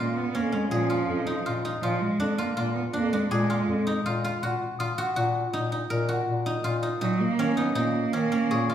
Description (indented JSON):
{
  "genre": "contemporary instrumental, chamber music in an uneven meter",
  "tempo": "162 BPM",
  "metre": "7/4",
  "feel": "straight",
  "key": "Bb minor",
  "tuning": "A4 = 440 Hz",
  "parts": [
    { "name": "rich cello", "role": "melody", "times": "0.0-8.7 s", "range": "F3 to Cb4", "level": "-27 LUFS", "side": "right 4 dB", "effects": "none" },
    { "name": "guzheng", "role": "arpeggios", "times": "0.0-8.7 s", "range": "Db4 to Bb4", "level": "-29 LUFS", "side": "left 1 dB", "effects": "none" },
    { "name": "mellow bass clarinet", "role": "bass", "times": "0.0-8.7 s", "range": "F2 to Eb3", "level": "-29 LUFS", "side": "left 2 dB", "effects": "none" },
    { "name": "small celesta", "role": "texture", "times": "0.0-8.7 s", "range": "Db6 to F6", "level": "-37 LUFS", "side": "left 7 dB", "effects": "none" }
  ],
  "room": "wet recital hall reverb, RT60 1.4 s",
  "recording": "heard from further back in the room",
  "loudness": "-24 LUFS",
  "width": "side -10 dB against mid",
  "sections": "0.0-8.7 A section",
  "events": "none",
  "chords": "0.0 Bbm7; 1.8 Bb7; 4.4 Ebm/Bb; 7.0 Absus24/Bb",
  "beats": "0.34 0.71 1.08 1.45 | 1.82 2.20 2.57 2.94 3.31 3.68 4.05 | 4.42 4.79 5.16 5.53 5.91 6.28 6.65 | 7.02 7.39 7.76 8.13 8.50"
}